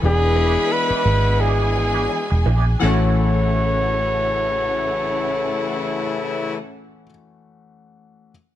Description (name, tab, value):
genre	soul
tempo	81-91 BPM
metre	4/4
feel	swing 58% on 16ths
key	A major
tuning	A4 = 435 Hz
part	warm studio violin section	second line	0.0-6.6 s	C#4 to B5	-28 LUFS	left 2 dB	none
part	clear baby grand piano	accompaniment	0.0-8.3 s	E3 to G#4	-27 LUFS	left 6 dB	none
part	warm studio string section	sustained chords	0.0-6.6 s	A2 to B4	-34 LUFS	right 1 dB	none
part	clear horn section	stabs	0.0-6.6 s	C#3 to E4	-27 LUFS	left 4 dB	none
part	vintage muted fingered electric bass	bass	0.0-7.1 s	E1 to Bb1	-19 LUFS	right 1 dB	none
part	warm flugelhorn	melody	0.1-6.6 s	G#4 to C#5	-22 LUFS	equal	none
part	electric guitar through a small old amp	riff	0.4-7.1 s	B3 to D5	-32 LUFS	right 9 dB	wah, tremolo
room	light reverb, studio ambience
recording	none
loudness	-17 LUFS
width	side -12 dB against mid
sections	0.0-2.8 A section; 2.8-5.8 B section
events	slowing down 0.0-2.8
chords	0.0 E7; 2.8 A6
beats	| 0.04 0.71 1.39 2.10 | 2.83 3.57 4.31 5.06